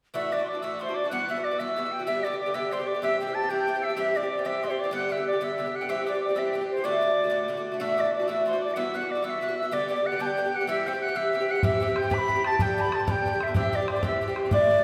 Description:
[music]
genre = celtic folk, Celtic jig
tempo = 125 BPM (dotted quarters)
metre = 6/8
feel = straight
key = unclear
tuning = A4 = 440 Hz
[part]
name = bright wooden flute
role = melody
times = 0.1-14.8 s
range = C5 to D6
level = -30 LUFS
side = equal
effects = none
[part]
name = hollow wooden whistle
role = second line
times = 0.1-14.8 s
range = C6 to B6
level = -35 LUFS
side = equal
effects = none
[part]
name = Irish bouzouki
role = accompaniment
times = 0.1-14.8 s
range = G2 to G4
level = -31 LUFS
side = equal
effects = none
[part]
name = bodhran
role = percussion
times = 11.6-14.7 s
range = none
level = -31 LUFS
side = equal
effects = none
[sound]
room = wet scoring stage reverb, RT60 2.0 s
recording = recorded in a church or concert hall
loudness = -27 LUFS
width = mono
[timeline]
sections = 0.1-7.8 A section; 7.8-14.8 A section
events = none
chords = 0.1 Dadd9; 1.1 Emadd9; 2.1 G; 3.0 C; 4.9 G; 5.9 C; 6.8 D; 7.8 Dadd9; 8.8 Emadd9; 9.7 G; 10.7 C; 12.6 G; 13.6 C

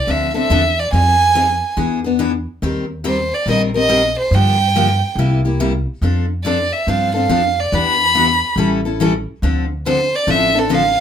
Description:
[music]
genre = acoustic string swing (jazz manouche)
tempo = 141 BPM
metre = 4/4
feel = swing 63% on 8ths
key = D minor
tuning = A4 = 440 Hz
[part]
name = warm violin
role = melody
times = 0.0-11.0 s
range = A4 to B5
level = -15 LUFS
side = right 2 dB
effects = none
[part]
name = picked steel-string acoustic guitar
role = accompaniment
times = 0.1-10.8 s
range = C3 to Bb4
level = -18 LUFS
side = left 4 dB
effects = none
[part]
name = upright bass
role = bass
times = 0.1-11.0 s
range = A1 to G2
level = -20 LUFS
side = equal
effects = none
[sound]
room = moderate club reverb, RT60 0.5 s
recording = minimal, uncompressed stereo recording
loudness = -14 LUFS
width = side -8 dB against mid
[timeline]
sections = 0.0-11.0 A section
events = none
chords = 0.0 Dm9; 0.9 Fm7; 1.8 E7; 2.6 Eb6; 4.3 Gm7; 5.2 C7; 6.0 F69; 7.7 Em7; 8.6 A7; 9.4 Dm7

